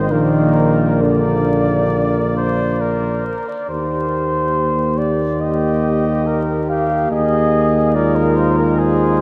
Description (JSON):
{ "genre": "classical, brass quintet", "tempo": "65-72 BPM", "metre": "4/4", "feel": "rubato", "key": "Eb major", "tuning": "A4 = 437 Hz", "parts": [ { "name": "dark cornet", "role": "melody", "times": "0.0-9.2 s", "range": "Bb4 to F5", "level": "-23 LUFS", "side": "equal", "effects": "none" }, { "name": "mellow trumpet", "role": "second line", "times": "0.0-9.2 s", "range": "G4 to D5", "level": "-27 LUFS", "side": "equal", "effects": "none" }, { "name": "mellow trombone", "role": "accompaniment", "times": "0.0-9.2 s", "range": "D3 to Bb3", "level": "-24 LUFS", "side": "equal", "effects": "none" }, { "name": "warm French horn", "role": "accompaniment", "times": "0.0-9.2 s", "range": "Bb3 to G4", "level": "-25 LUFS", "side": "equal", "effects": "none" }, { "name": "warm tuba", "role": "bass", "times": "0.0-9.2 s", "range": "Ab1 to Eb2", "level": "-21 LUFS", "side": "equal", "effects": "none" } ], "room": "wet huge ambient reverb, RT60 7.1 s", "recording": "in a vast, echoing space, vinyl crackle", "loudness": "-17 LUFS", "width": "mono", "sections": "0.0-3.7 A section; 3.7-9.2 B section", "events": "none", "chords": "0.1 Bb; 3.7 Eb; 7.1 Fm7/Eb", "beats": "| 0.11 1.02 1.92 2.81 | 3.70 4.56 5.41 6.26 | 7.11 7.95 8.79" }